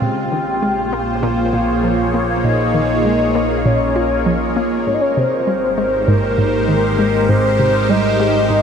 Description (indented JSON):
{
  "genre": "ambient, sequencer-driven space music",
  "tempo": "99 BPM",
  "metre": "4/4",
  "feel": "straight",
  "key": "unclear",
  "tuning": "A4 = 440 Hz",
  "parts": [
    { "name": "soft octave-layered synth lead", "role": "melody", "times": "0.0-8.6 s", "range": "Bb4 to G5", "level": "-19 LUFS", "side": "left 1 dB", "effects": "chorus, tremolo, shimmer reverb, tape echo" },
    { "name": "evolving wavetable pad", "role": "sustained chords", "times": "0.0-8.6 s", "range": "Ab3 to Db5", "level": "-18 LUFS", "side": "right 1 dB", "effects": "phaser, built-in reverb, shimmer reverb" },
    { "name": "analog pluck", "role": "riff", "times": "0.0-8.6 s", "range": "Ab2 to F4", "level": "-20 LUFS", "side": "equal", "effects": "chorus, shimmer reverb, tape echo" },
    { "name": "analog drone", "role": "bass", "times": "0.7-8.6 s", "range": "Ab1 to Bb1", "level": "-23 LUFS", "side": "left 1 dB", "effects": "chorus" }
  ],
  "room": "wet huge ambient reverb, RT60 7.6 s",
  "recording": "none",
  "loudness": "-14 LUFS",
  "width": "side -7 dB against mid",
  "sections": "0.0-8.6 A section",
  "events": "filter sweep on synth arpeggio sound 0.0-8.6",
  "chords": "0.0 Bbm7; 4.9 Abmaj7"
}